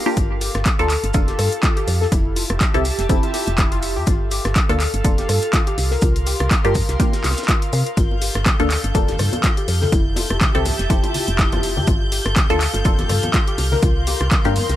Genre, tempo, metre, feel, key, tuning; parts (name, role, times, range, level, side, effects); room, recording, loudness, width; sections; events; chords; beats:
deep house; 123 BPM; 4/4; swing 56% on 16ths; G dorian; A4 = 441 Hz
airy breathy pad; sustained chords; 0.0-14.8 s; G4 to C6; -28 LUFS; right 2 dB; chorus, sidechain pumping
filtered dub chord stab; stabs; 0.0-14.5 s; Bb3 to A4; -24 LUFS; equal; phaser, sidechain pumping, digital delay
warbly dusty pluck; arpeggios; 0.1-14.5 s; E4 to Bb4; -27 LUFS; left 4 dB; ensemble chorus, sidechain pumping, ping-pong delay
woody FM bass; bass; 0.2-14.8 s; F1 to C3; -21 LUFS; equal; tube saturation
electronic kick drum; drums; 0.2-14.4 s; -18 LUFS; equal; overdrive
punchy analog drum machine; drums; 0.2-14.8 s; handclaps, hi-hat, rim click; -24 LUFS; left 1 dB; overdrive
shaker and snare drum; drums; 0.2-14.8 s; -35 LUFS; right 1 dB
clear studio violin section; texture; 8.0-14.8 s; G6; -30 LUFS; equal; sidechain pumping
bongos and congas; percussion; 8.1-14.7 s; -28 LUFS; left 1 dB
small room ambience; vinyl crackle; -16 LUFS; side -13 dB against mid
0.0-14.8 A section
0.2 Gm9; 2.1 Fmaj9; 4.1 Gm9; 5.8 C7sus4; 8.0 Gm9; 9.9 Fmaj9; 11.9 Gm9; 13.6 C7sus4
| 0.17 0.66 1.14 1.63 | 2.12 2.61 3.10 3.58 | 4.07 4.56 5.05 5.53 | 6.02 6.51 7.00 7.49 | 7.97 8.46 8.95 9.44 | 9.92 10.41 10.90 11.39 | 11.88 12.36 12.85 13.34 | 13.83 14.31